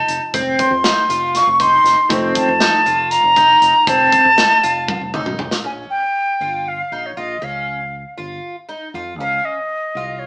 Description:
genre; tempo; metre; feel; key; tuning
progressive instrumental, band music in an uneven meter; 237 BPM (eighths); 7/8; straight; Bb dorian from 5.6 s; A4 = 442 Hz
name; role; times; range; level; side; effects
bright concert flute; melody; 0.0-10.3 s; Db5 to Db6; -14 LUFS; equal; none
vintage hollow-body jazz guitar; accompaniment; 0.0-5.6 s; F3 to A4; -24 LUFS; equal; none
picked twelve-string acoustic guitar; arpeggios; 0.0-10.3 s; C4 to F4; -23 LUFS; equal; none
fingered electric bass; bass; 0.1-10.3 s; F1 to F2; -31 LUFS; equal; none
modern studio drum kit; drums; 0.1-5.6 s; hi-hat, kick drum, snare drum, toms; -21 LUFS; equal; none
room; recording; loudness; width
moderate studio reverb, RT60 0.7 s; band playing live in one room, small speaker sound; -13 LUFS; side -29 dB against mid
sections
0.0-5.6 A section; 5.6-10.3 B section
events
drum fill 4.9-5.6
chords
0.0 F7; 5.6 Bbm; 9.2 Db

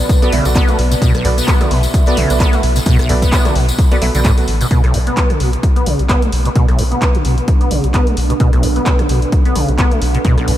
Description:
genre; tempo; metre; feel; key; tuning
acid house; 130 BPM; 4/4; swing 56% on 16ths; B minor; A4 = 440 Hz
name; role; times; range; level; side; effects
dark analog pad; sustained chords; 0.0-4.7 s; B3 to E5; -25 LUFS; right 1 dB; chorus, sidechain pumping
round analog bass; bass; 0.0-10.6 s; A1 to B1; -16 LUFS; equal; sidechain pumping
electronic kick drum; drums; 0.1-10.4 s; none; -13 LUFS; equal; none
punchy analog drum machine; drums; 0.1-10.6 s; handclaps, hi-hat, rim click; -23 LUFS; equal; none
tambourine; percussion; 0.1-4.7 s; none; -28 LUFS; left 3 dB; none
acid bass, saw; riff; 0.2-10.5 s; B1 to B3; -18 LUFS; equal; ensemble chorus, diffuse ambient delay
dark baby grand piano; stabs; 0.2-4.4 s; B3 to F#5; -23 LUFS; right 3 dB; low-pass filter, diffuse ambient delay
deep dark ambient pad; texture; 6.9-10.6 s; D4 to F#5; -24 LUFS; right 3 dB; chorus, built-in reverb, sidechain pumping
room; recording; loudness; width
moderate cathedral reverb, RT60 6.1 s; dreamy mix soaked in reverb; -11 LUFS; side -12 dB against mid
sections
0.0-4.7 A section; 4.7-10.6 B section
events
drop 0.0-4.7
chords
0.0 Bm7

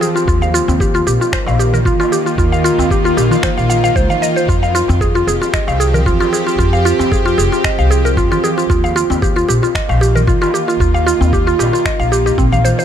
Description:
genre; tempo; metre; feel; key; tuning
organic downtempo; 114 BPM; 4/4; swing 54% on 16ths; unclear; A4 = 441 Hz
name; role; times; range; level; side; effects
bowed-like drone; sustained chords; 0.0-12.8 s; Eb3 to G4; -19 LUFS; right 1 dB; built-in reverb, sidechain pumping
mallet-like synth pluck; arpeggios; 0.0-12.8 s; C4 to F5; -16 LUFS; equal; chorus, ping-pong delay
electronic shaker and finger snaps; drums; 0.0-12.8 s; none; -25 LUFS; right 2 dB; overdrive, studio reverb
upright bass; bass; 0.3-12.7 s; F1 to F2; -16 LUFS; equal; sidechain pumping
electronic kick drum; drums; 0.3-12.5 s; none; -18 LUFS; equal; studio reverb
darbuka; percussion; 0.4-12.6 s; none; -25 LUFS; right 4 dB; none
room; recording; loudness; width
light reverb; none; -11 LUFS; side -9 dB against mid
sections
0.0-12.8 A section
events
none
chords
0.3 Eb; 4.5 Fm; 8.7 Eb

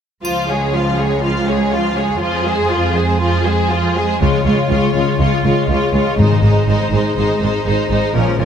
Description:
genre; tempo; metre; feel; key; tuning
cinematic, heroic adventure film score; 122 BPM; 4/4; straight; Db major; A4 = 440 Hz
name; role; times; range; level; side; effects
warm symphonic violin section; second line; 0.2-8.4 s; Db4 to Ab4; -20 LUFS; left 1 dB; none
warm symphonic cello section; bass; 0.2-8.4 s; Db2 to Bb2; -20 LUFS; right 3 dB; none
triangle; percussion; 0.2-1.2 s; none; -32 LUFS; equal; none
clear symphonic violin section; melody; 0.3-8.4 s; Ab4 to F5; -24 LUFS; left 6 dB; none
warm symphonic viola section; accompaniment; 0.3-8.4 s; F3 to Ab3; -21 LUFS; right 2 dB; none
concert harp; arpeggios; 4.2-8.4 s; Ab2 to Db5; -20 LUFS; left 8 dB; none
rich symphonic double bass section; bass; 4.2-8.4 s; Ab1 to Db2; -20 LUFS; right 3 dB; none
timpani; percussion; 6.2-6.9 s; Ab2; -18 LUFS; left 1 dB; none
room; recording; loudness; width
wet concert hall reverb, RT60 2.2 s; none; -13 LUFS; side -8 dB against mid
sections
0.3-4.2 A section; 4.2-8.4 B section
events
build-up 4.2-8.4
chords
0.3 Db; 2.2 Fm; 4.2 Db; 6.2 Ab

